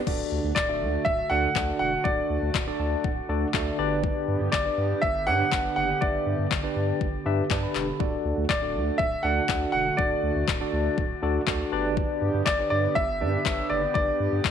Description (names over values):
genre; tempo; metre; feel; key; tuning
dance-pop; 121 BPM; 4/4; straight; D major; A4 = 442 Hz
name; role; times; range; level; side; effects
chorused pulse-width pad; sustained chords; 0.0-14.5 s; D3 to G4; -34 LUFS; right 2 dB; sidechain pumping
tine electric piano; accompaniment; 0.1-14.4 s; D4 to B5; -29 LUFS; equal; slow stereo tremolo, sidechain pumping
saturated sub bass; bass; 0.1-14.5 s; D1 to G2; -30 LUFS; equal; sidechain pumping
pop drum kit; drums; 0.1-14.5 s; crash cymbal, handclaps, kick drum; -29 LUFS; left 4 dB; overdrive
clear concert grand piano; melody; 0.5-14.5 s; D5 to F#5; -26 LUFS; equal; slapback echo
room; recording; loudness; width
light reverb, digital ambience; 1960s-style stereo; -23 LUFS; side -8 dB against mid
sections
0.1-14.5 A section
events
tine electric piano fill 2.5-4.0, 7.3-8.0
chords
0.1 D; 3.8 G; 8.0 D; 11.7 G